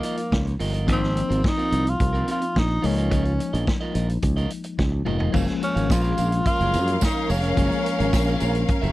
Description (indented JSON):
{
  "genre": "disco",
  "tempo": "108 BPM",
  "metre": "4/4",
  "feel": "straight",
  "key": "unclear",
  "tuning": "A4 = 441 Hz",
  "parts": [
    { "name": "breathy tenor saxophone", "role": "melody", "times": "0.0-8.9 s", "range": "Bb3 to F4", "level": "-26 LUFS", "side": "equal", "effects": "none" },
    { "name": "electric guitar at the edge of break-up", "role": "accompaniment", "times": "0.0-8.9 s", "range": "C4 to F5", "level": "-31 LUFS", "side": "right 4 dB", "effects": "none" },
    { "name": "tine electric piano", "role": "accompaniment", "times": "0.0-8.9 s", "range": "F3 to Eb4", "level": "-28 LUFS", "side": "left 5 dB", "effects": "medium stereo tremolo" },
    { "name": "vintage drum kit", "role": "drums", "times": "0.0-8.9 s", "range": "crash cymbal, hi-hat, kick drum, snare drum, toms", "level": "-25 LUFS", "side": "equal", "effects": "none" },
    { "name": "modern bright fingered electric bass", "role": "bass", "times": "0.3-8.9 s", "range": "F1 to Gb2", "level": "-24 LUFS", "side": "equal", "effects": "none" },
    { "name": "tambourine", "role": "percussion", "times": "5.4-8.5 s", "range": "none", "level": "-40 LUFS", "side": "right 18 dB", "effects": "none" },
    { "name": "rich studio string section", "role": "second line", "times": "6.4-8.9 s", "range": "Db4 to F5", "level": "-28 LUFS", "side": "equal", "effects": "none" }
  ],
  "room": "little or no reverb",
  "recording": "dry, close 1970s-style studio recording",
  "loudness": "-20 LUFS",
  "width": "side -16 dB against mid",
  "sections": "0.0-5.3 A section; 5.3-8.9 B section",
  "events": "drum fill 4.8-5.3",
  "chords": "0.0 Db69; 0.9 Ab69; 2.8 Db69; 5.3 Gbmaj9"
}